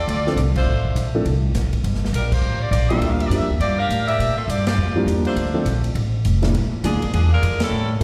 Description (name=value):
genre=jazz, big band swing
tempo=204 BPM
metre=4/4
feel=swing 60% on 8ths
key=D minor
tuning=A4 = 442 Hz
part: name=edgy saxophone section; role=melody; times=0.0-7.9 s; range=F3 to F5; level=-26 LUFS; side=equal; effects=slapback echo
part: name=upright bass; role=bass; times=0.0-8.0 s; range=F1 to Bb2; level=-22 LUFS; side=equal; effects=none
part: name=swinging big-band drum kit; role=drums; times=0.1-8.0 s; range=crash cymbal, hi-hat, kick drum, ride cymbal, snare drum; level=-31 LUFS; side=equal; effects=none
part: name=warm grand piano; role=accompaniment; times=0.3-8.0 s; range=F3 to A4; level=-25 LUFS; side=equal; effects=slapback echo
room=light reverb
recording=live gig heard through the venue's PA, recital hall reverb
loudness=-20 LUFS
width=mono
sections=0.0-8.0 A section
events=band accent 0.5, 2.3, 4.6, 7.6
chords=0.0 Dm7; 1.8 Gm7; 5.4 Dm7; 6.5 Bb7